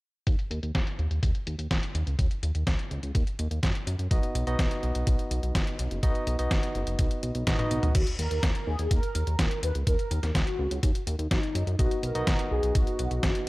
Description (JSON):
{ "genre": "italo disco", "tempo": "125 BPM", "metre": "4/4", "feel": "straight", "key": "Eb minor", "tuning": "A4 = 440 Hz", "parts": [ { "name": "chorused synth bass", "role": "bass", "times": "0.3-13.3 s", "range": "Eb1 to Gb2", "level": "-29 LUFS", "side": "equal", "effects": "none" }, { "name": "detuned 8-bit digital drum machine", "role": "drums", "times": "0.3-13.4 s", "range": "crash cymbal, hi-hat, snare drum, toms", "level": "-32 LUFS", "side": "equal", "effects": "low-pass filter on hats, low-pass filter on snare, low-pass filter on toms, low-pass filter on cymbals, low-pass filter on room" }, { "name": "electronic kick drum", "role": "drums", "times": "0.3-13.3 s", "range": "none", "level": "-27 LUFS", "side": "equal", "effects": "none" }, { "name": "barky tine electric piano", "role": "stabs", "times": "4.1-7.9, 11.8-13.5 s", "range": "B3 to D#5", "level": "-33 LUFS", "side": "right 1 dB", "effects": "fast stereo tremolo" }, { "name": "mellow synth brass", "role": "melody", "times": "7.5-13.5 s", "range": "D#4 to Cb5", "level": "-33 LUFS", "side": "equal", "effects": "chorus, vintage 12-bit sampler grit, analog delay" } ], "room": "little or no reverb", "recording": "dry, gritty hardware recording", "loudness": "-25 LUFS", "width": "side -21 dB against mid", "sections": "0.3-8.0 A section; 8.0-13.5 B section", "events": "drum fill 7.5-8.0", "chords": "0.3 Ebm; 4.1 B; 8.0 Ebm; 11.8 B" }